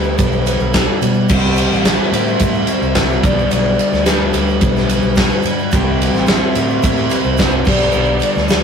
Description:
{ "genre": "classic rock", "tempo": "108 BPM", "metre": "4/4", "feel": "straight", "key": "G major", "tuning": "A4 = 441 Hz", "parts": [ { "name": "lead guitar through a small cranked amp", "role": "melody", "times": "0.0-8.6 s", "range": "B4 to G5", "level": "-22 LUFS", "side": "equal", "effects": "overdrive" }, { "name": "raw garage guitar", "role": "riff", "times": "0.0-8.6 s", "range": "G2 to C4", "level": "-18 LUFS", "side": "left 1 dB", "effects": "overdrive" }, { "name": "fingered electric bass", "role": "bass", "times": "0.0-8.6 s", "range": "A1 to B2", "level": "-20 LUFS", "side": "right 1 dB", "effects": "none" }, { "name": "tube shaker", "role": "percussion", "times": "0.0-8.6 s", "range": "none", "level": "-38 LUFS", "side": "right 8 dB", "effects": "none" }, { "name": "big rock drum kit", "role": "drums", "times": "0.2-8.6 s", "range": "crash cymbal, kick drum, ride cymbal, snare drum", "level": "-16 LUFS", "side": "equal", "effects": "none" } ], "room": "moderate small room reverb, RT60 0.5 s", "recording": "rough rehearsal-room recording", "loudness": "-12 LUFS", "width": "side -6 dB against mid", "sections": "0.0-8.6 A section", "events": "none", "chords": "0.0 G/B; 1.3 C; 3.2 G/B; 5.7 C; 7.7 G/B" }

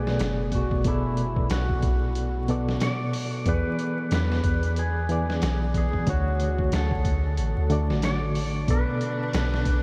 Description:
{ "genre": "trip hop", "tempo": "92 BPM", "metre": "4/4", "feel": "swing 59% on 16ths", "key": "B dorian", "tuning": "A4 = 440 Hz", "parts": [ { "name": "clean lap steel guitar", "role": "melody", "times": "0.0-9.8 s", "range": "E4 to D5", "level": "-34 LUFS", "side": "equal", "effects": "dub echo" }, { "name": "overdriven reed electric piano", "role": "accompaniment", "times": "0.0-9.8 s", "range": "B2 to D5", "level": "-30 LUFS", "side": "equal", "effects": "medium tremolo, low-pass filter" }, { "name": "soft 808-style bass", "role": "bass", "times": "0.0-9.8 s", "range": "F#1 to E2", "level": "-29 LUFS", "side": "equal", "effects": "none" }, { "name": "trip hop sampler-style drum kit", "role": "drums", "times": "0.1-9.8 s", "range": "hi-hat, kick drum, snare drum", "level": "-31 LUFS", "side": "equal", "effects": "vintage 12-bit sampler grit" }, { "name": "bright symphonic string section", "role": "sustained chords", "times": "8.7-9.8 s", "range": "D4", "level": "-38 LUFS", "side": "equal", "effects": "none" } ], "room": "moderate huge ambient reverb, RT60 7.3 s", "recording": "dreamy mix soaked in reverb, vinyl crackle", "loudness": "-25 LUFS", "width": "mono", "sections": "0.0-9.8 A section", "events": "none", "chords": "0.0 Bm7; 3.5 E7; 6.1 Dmaj7; 8.7 Bm7" }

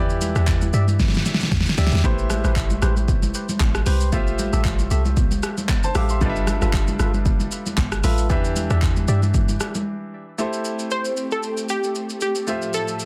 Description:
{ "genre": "amapiano", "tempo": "115 BPM", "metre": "4/4", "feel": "swing 55% on 16ths", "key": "A minor", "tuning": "A4 = 440 Hz", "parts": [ { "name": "bright baby grand piano", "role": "accompaniment", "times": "0.0-13.1 s", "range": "E3 to D6", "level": "-31 LUFS", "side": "equal", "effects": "none" }, { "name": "deep log drum bass", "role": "bass", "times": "0.0-9.6 s", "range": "G1 to G2", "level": "-23 LUFS", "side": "equal", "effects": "none" }, { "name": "deep house drum kit", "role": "drums", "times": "0.1-13.1 s", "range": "handclaps, hi-hat, kick drum, rim click, shaker, snare drum", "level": "-25 LUFS", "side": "equal", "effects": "soft clipping on snare" }, { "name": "congas", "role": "percussion", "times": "0.2-9.9 s", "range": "none", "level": "-32 LUFS", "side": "equal", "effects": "none" }, { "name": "percussive organ stab", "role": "stabs", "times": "0.4-9.2 s", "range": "F4 to E5", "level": "-33 LUFS", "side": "equal", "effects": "chorus, delay" }, { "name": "phased string machine", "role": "sustained chords", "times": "10.4-13.1 s", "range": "A2 to E5", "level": "-33 LUFS", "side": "equal", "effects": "ensemble chorus, phaser, sidechain pumping" }, { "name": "analog pluck", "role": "melody", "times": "10.9-13.1 s", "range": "G4 to C5", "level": "-26 LUFS", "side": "equal", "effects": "chorus, delay" } ], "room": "digital ambience", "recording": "dense, heavily limited modern master", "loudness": "-21 LUFS", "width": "mono", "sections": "0.0-10.4 A section; 10.4-13.1 B section", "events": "drop 0.0-10.4; drum fill 1.0-2.0; break 9.9-10.4", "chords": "0.0 Em7; 2.0 Am9; 4.1 Fmaj9/A; 6.2 G13; 8.3 Em7; 10.4 Am7; 12.5 Fmaj9/A" }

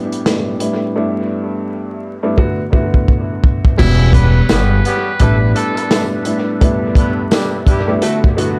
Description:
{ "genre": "hip hop, boom-bap hip-hop", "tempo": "85 BPM", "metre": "4/4", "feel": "swing 60% on 16ths", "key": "E dorian", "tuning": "A4 = 439 Hz", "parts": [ { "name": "dark upright piano", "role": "accompaniment", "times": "0.0-8.6 s", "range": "E2 to F#4", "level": "-20 LUFS", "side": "equal", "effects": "high-pass filter, low-pass filter, dub echo" }, { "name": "crunchy breakbeat drum kit", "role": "drums", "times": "0.1-8.6 s", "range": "crash cymbal, hi-hat, kick drum, snare drum", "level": "-17 LUFS", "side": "equal", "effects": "dub echo" }, { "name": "trumpet with metal mute", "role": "melody", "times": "3.8-6.1 s", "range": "E4 to B4", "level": "-26 LUFS", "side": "equal", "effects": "high-pass filter, low-pass filter, dub echo" }, { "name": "upright bass", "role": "bass", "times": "3.8-5.5 s", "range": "E1 to A1", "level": "-15 LUFS", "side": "equal", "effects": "none" }, { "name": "mellow horn section", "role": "stabs", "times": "4.1-8.6 s", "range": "F#3 to B4", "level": "-24 LUFS", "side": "equal", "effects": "high-pass filter, low-pass filter, dub echo" }, { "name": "tambourine", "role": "percussion", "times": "4.5-7.5 s", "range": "none", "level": "-40 LUFS", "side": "equal", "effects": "dub echo" } ], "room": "small room ambience", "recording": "echo-heavy mix, vinyl crackle", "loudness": "-15 LUFS", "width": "mono", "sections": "0.0-3.8 A section; 3.8-8.6 B section", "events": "drum fill 2.4-3.8", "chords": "0.0 A9sus4; 1.0 G69; 2.4 D69; 3.8 Em69; 5.2 A9sus4; 6.6 G69; 8.0 D69" }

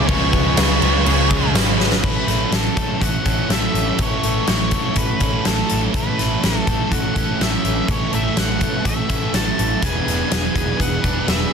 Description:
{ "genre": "rock, shoegaze and dream pop", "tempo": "123 BPM", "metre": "4/4", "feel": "straight", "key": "A major", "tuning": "A4 = 441 Hz", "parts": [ { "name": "octave-fuzz lead guitar", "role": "melody", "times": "0.0-11.5 s", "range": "A4 to A5", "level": "-25 LUFS", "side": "left 1 dB", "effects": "distortion, digital delay" }, { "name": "direct-recorded clean electric guitar", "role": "arpeggios", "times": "0.0-11.5 s", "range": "E3 to G#4", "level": "-32 LUFS", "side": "left 15 dB", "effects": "analog chorus, digital delay" }, { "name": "biting overdriven guitar", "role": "riff", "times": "0.0-11.5 s", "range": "A2 to B4", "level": "-23 LUFS", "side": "right 15 dB", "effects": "reverse reverb" }, { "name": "overdriven electric guitar", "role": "riff", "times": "0.0-11.5 s", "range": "A2 to B4", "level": "-25 LUFS", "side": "left 14 dB", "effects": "wide subtle chorus" }, { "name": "overdriven electric guitar", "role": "riff", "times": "0.0-2.0 s", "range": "C#3 to C#4", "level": "-25 LUFS", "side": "left 1 dB", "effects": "none" }, { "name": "vintage muted picked electric bass", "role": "bass", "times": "0.0-11.4 s", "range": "E1 to C#2", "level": "-23 LUFS", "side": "equal", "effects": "none" }, { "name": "huge arena drum kit", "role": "drums", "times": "0.1-11.4 s", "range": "crash cymbal, hi-hat, kick drum, snare drum", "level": "-20 LUFS", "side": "equal", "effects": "none" }, { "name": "tambourine", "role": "percussion", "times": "0.6-1.7 s", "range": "none", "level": "-31 LUFS", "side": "right 13 dB", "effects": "none" } ], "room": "little or no reverb", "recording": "dense, heavily limited modern master", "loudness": "-16 LUFS", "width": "side -6 dB against mid", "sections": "0.0-2.0 A section; 2.0-11.5 B section", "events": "drum fill 1.8", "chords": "0.0 C#7; 2.0 A6; 9.8 E7" }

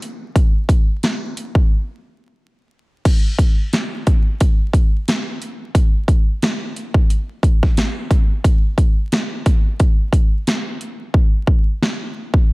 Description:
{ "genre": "hip hop", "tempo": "89 BPM", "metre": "4/4", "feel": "swing 57% on 16ths", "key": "none", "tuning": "none", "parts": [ { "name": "big-room dance drum kit", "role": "drums", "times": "0.0-12.5 s", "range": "crash cymbal, hi-hat, kick drum, snare drum", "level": "-15 LUFS", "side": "equal", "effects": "none" } ], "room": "light reverb", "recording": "vinyl crackle", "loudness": "-15 LUFS", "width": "side -24 dB against mid", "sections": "0.0-3.1 A section; 3.1-12.5 A section", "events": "break 1.7-3.1; hi-hats muted 11.1-12.5", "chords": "none" }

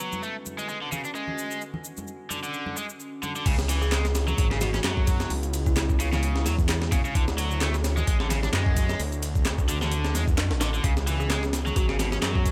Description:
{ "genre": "breakbeat, breaks", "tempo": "130 BPM", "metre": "4/4", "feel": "swing 55% on 16ths", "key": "C# phrygian", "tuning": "A4 = 440 Hz", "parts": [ { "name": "warbly tape-like pad", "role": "sustained chords", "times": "0.0-12.5 s", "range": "C#3 to C#5", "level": "-41 LUFS", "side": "equal", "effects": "chorus, built-in reverb, vintage 12-bit sampler grit, sidechain pumping" }, { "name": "overdriven electric guitar", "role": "riff", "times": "0.0-12.5 s", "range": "B2 to D4", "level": "-34 LUFS", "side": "equal", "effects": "dub echo" }, { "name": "punchy analog drum machine", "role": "drums", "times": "0.0-12.5 s", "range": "handclaps, ride cymbal, shaker", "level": "-38 LUFS", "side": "equal", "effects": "none" }, { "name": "congas", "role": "percussion", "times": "0.1-12.2 s", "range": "none", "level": "-41 LUFS", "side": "equal", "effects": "none" }, { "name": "detuned saw bass", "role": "bass", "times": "3.5-12.5 s", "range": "G#1 to F#2", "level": "-29 LUFS", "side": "equal", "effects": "none" }, { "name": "breakbeat sampler-style drum kit", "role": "drums", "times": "3.5-12.5 s", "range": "crash cymbal, hi-hat, kick drum, snare drum", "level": "-28 LUFS", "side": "equal", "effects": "none" }, { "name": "kalimba", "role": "melody", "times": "3.8-6.1, 11.2-12.0 s", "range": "E4 to G#4", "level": "-40 LUFS", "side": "equal", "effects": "small speaker sound, dub echo" } ], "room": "digital ambience", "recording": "none", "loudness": "-26 LUFS", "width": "mono", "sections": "0.0-3.5 A section; 3.5-12.5 B section", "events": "drop 3.5-12.5", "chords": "0.0 Dmaj7; 3.5 C#m7; 7.2 Dmaj7; 10.8 C#m7" }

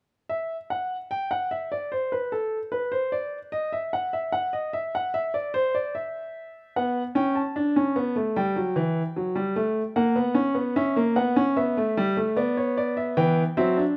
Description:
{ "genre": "classical, baroque-style 3-part fugue for grand piano", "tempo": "75 BPM", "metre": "4/4", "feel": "straight", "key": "E minor", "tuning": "A4 = 436 Hz", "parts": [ { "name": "clear baby grand piano", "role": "solo", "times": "0.3-14.0 s", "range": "E3 to A5", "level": "-26 LUFS", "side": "equal", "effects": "none" } ], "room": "moderate large studio reverb, RT60 1.2 s", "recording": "none", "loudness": "-26 LUFS", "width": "mono", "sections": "0.3-14.0 A section", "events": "none", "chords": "0.3 N.C.; 6.8 Bm; 8.4 Em; 10.0 F#7/A#; 11.6 Bm; 13.2 Em" }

